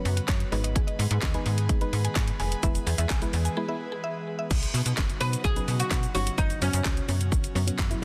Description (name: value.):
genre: dance-pop.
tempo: 128 BPM.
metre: 4/4.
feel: straight.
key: B major.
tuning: A4 = 440 Hz.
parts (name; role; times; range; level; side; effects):
soft round pluck; accompaniment; 0.0-8.0 s; F#3 to C#5; -37 LUFS; equal; chorus, sidechain pumping.
airy breathy pad; sustained chords; 0.0-8.0 s; B2 to B4; -39 LUFS; equal; chorus, sidechain pumping.
slap-like FM bass; bass; 0.1-7.9 s; E1 to B2; -30 LUFS; equal; sidechain pumping.
house drum kit; drums; 0.1-8.0 s; crash cymbal, handclaps, hi-hat, kick drum, shaker, snare drum; -30 LUFS; equal; none.
mallet-like synth pluck; arpeggios; 0.2-4.4 s; F#4 to G#5; -40 LUFS; equal; chorus, sidechain pumping, tape echo.
group handclap; percussion; 0.3-7.9 s; none; barely audible; none; none.
oud; melody; 5.2-8.0 s; C#4 to B4; -34 LUFS; equal; none.
room: little or no reverb.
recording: dense, heavily limited modern master.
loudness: -27 LUFS.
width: mono.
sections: 0.0-4.5 A section; 4.5-8.0 B section.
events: break 3.6-4.5.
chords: 0.0 F#sus4; 0.5 G#m; 2.6 E; 4.5 Badd9; 6.4 F#sus4.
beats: 0.29 | 0.76 1.23 1.70 2.16 | 2.63 3.10 3.57 4.04 | 4.51 4.98 5.45 5.91 | 6.38 6.85 7.32 7.79.